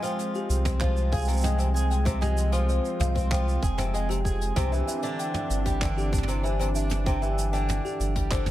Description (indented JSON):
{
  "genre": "folktronica",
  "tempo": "96 BPM",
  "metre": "4/4",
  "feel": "straight",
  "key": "C major",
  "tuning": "A4 = 440 Hz",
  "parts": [
    { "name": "music box", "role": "second line", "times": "0.0-8.5 s", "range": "G4 to G5", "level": "-34 LUFS", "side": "left 2 dB", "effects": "digital delay" },
    { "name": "warm analog pad", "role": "sustained chords", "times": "0.0-8.5 s", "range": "E3 to D4", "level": "-33 LUFS", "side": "right 1 dB", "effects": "chorus" },
    { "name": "fingerpicked twelve-string acoustic guitar", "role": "arpeggios", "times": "0.0-8.5 s", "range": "C3 to Ab4", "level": "-32 LUFS", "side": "right 1 dB", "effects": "digital delay" },
    { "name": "soft brush drum kit", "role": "drums", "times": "0.0-8.5 s", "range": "handclaps, hi-hat, shaker, toms", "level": "-35 LUFS", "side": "right 2 dB", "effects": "none" },
    { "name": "round analog bass", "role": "bass", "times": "0.5-8.5 s", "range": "F1 to C2", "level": "-26 LUFS", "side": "equal", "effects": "none" },
    { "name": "electronic kick drum", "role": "drums", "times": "0.7-8.4 s", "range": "none", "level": "-28 LUFS", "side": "equal", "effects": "none" }
  ],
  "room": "studio ambience",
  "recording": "none",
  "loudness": "-24 LUFS",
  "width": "side -14 dB against mid",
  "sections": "0.0-8.5 A section",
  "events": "none",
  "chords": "0.0 Fm; 4.6 Cadd9",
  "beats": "0.19 0.81 1.44 | 2.06 2.69 3.31 3.94 | 4.56 5.19 5.81 6.44 | 7.06 7.69 8.31"
}